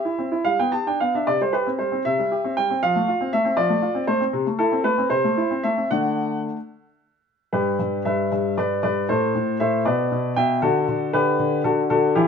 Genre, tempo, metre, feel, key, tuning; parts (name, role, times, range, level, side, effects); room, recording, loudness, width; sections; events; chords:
classical-period piano sonatina; 73-81 BPM (dotted quarters); 6/8; rubato; G major from 4.3 s; A4 = 445 Hz
clear grand piano; solo; 0.0-12.3 s; G2 to A5; -19 LUFS; equal
light reverb; minimal, uncompressed stereo recording; -19 LUFS; side -6 dB against mid
0.0-7.5 A section; 7.5-12.3 B section
0.5 G; 1.3 C; 2.8 F; 4.3 Am/C; 5.9 D; 7.5 G; 9.1 Am; 9.9 Bmadd11; 10.6 D